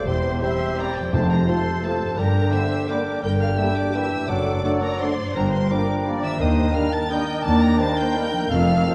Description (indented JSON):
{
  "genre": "classical",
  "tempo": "171 BPM",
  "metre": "3/4",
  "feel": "uneven beats, rubato",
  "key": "unclear",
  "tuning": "A4 = 439 Hz",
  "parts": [
    { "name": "rich symphonic violin section", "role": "melody", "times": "0.0-8.9 s", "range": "G5 to Bb6", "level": "-36 LUFS", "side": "equal", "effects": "none" },
    { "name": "dark clarinet", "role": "second line", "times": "0.0-8.9 s", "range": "C4 to G4", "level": "-33 LUFS", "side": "equal", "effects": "none" },
    { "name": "mellow oboe", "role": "second line", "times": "0.0-8.9 s", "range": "G4 to C5", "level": "-36 LUFS", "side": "equal", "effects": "none" },
    { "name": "silver concert flute", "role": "second line", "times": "0.0-8.9 s", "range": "F5 to A5", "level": "-34 LUFS", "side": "equal", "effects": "none" },
    { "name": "warm symphonic violin section", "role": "second line", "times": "0.0-8.9 s", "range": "G4 to Bb5", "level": "-33 LUFS", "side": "equal", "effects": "none" },
    { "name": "mellow bassoon", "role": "accompaniment", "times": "0.0-8.9 s", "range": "C3 to F#3", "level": "-31 LUFS", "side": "equal", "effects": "none" },
    { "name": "warm symphonic viola section", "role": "accompaniment", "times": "0.0-8.9 s", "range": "G4 to E5", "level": "-34 LUFS", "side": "equal", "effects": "none" },
    { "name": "concert harp", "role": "arpeggios", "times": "0.0-8.9 s", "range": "E2 to D5", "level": "-33 LUFS", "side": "equal", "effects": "none" },
    { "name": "dark symphonic double bass section", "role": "bass", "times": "0.1-8.8 s", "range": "E1 to Eb2", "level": "-28 LUFS", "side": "equal", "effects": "none" },
    { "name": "warm symphonic cello section", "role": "bass", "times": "0.1-8.8 s", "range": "Eb2 to G2", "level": "-28 LUFS", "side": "equal", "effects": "none" },
    { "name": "clear trombone section", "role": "sustained chords", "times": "0.4-8.9 s", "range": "C3 to G3", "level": "-38 LUFS", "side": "equal", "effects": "none" },
    { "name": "dark French horn section", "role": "sustained chords", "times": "0.4-8.9 s", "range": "G3 to F4", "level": "-34 LUFS", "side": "equal", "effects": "none" },
    { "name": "timpani", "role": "percussion", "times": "1.1-1.6 s", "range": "F2", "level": "-31 LUFS", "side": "equal", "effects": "none" }
  ],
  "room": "moderate concert hall reverb, RT60 1.9 s",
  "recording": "dark, warm production, vinyl crackle",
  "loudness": "-22 LUFS",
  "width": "mono",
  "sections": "0.0-8.9 A section",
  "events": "none",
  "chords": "0.1 C/E; 1.1 F; 2.2 Gm; 4.3 D/F#; 5.3 Gm7; 6.4 Ebmaj7"
}